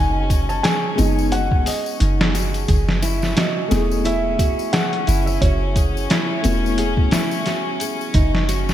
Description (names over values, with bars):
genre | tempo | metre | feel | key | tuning
trip hop | 88 BPM | 4/4 | swing 57% on 16ths | F# dorian | A4 = 440 Hz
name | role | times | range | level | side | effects
felt-muted upright piano | melody | 0.0-6.7 s | C#5 to A5 | -26 LUFS | right 1 dB | dub echo
felt-muted upright piano | accompaniment | 0.0-8.1 s | G#3 to G#4 | -26 LUFS | left 3 dB | tremolo, vintage 12-bit sampler grit, tape echo
rich chamber string section | sustained chords | 0.0-8.7 s | C#4 | -29 LUFS | left 4 dB | none
nylon-string guitar | arpeggios | 0.0-8.7 s | D#4 to G#4 | -26 LUFS | right 1 dB | tape echo
soft 808-style bass | bass | 0.0-8.7 s | E1 to F#1 | -21 LUFS | equal | none
trip hop sampler-style drum kit | drums | 0.3-8.7 s | hi-hat, kick drum, snare drum | -20 LUFS | equal | studio ambience, gated reverb
tambourine | percussion | 0.3-8.7 s | none | -34 LUFS | left 8 dB | none
room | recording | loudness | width
moderate lush hall reverb, RT60 3.0 s | bright 1980s-style digital production | -17 LUFS | side -12 dB against mid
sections
0.0-8.7 A section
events
none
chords
0.0 G#m7/F#; 2.7 F#m11; 8.1 G#7(no3)/F# (rootless)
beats
0.64 1.32 2.00 | 2.69 3.37 4.05 4.73 | 5.41 6.09 6.78 7.46 | 8.14